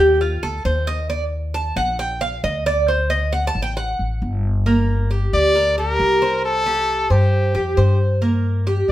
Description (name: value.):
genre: latin, Cuban son and guajira.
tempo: 135 BPM.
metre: 4/4.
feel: straight.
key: G minor.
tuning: A4 = 438 Hz.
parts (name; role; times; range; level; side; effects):
Cuban tres; arpeggios; 0.0-8.9 s; Bb3 to A5; -20 LUFS; right 1 dB; none.
upright bass; bass; 0.0-8.9 s; G1 to G2; -20 LUFS; left 1 dB; none.
clear trumpet; melody; 5.3-8.9 s; G4 to D5; -18 LUFS; left 1 dB; none.
room: wet studio reverb, RT60 0.8 s.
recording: heard from further back in the room.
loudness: -17 LUFS.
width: side -14 dB against mid.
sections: 0.0-4.7 A section; 4.7-8.9 B section.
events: Cuban tres solo 0.0-4.7.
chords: 0.0 F13; 1.1 Eb5; 2.9 D; 4.7 Gm; 6.4 C5; 8.2 Gm.